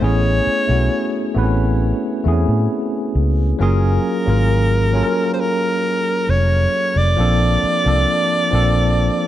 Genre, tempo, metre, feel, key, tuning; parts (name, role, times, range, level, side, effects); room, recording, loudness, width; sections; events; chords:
contemporary R&B; 67 BPM; 4/4; straight; A4 = 440 Hz
warm alto saxophone; melody; 0.0-9.3 s; Bb4 to D5; -20 LUFS; right 1 dB; ping-pong delay
tine electric piano; accompaniment; 0.0-9.3 s; F3 to B4; -20 LUFS; left 1 dB; fast stereo tremolo
vintage muted fingered electric bass; bass; 0.0-9.1 s; F1 to A2; -16 LUFS; equal
studio reverb; nothing above 10.7 kHz; -15 LUFS; side -12 dB against mid
0.0-9.3 A section
0.0 Amaj9; 3.6 Gbmaj9; 7.2 Bbmaj9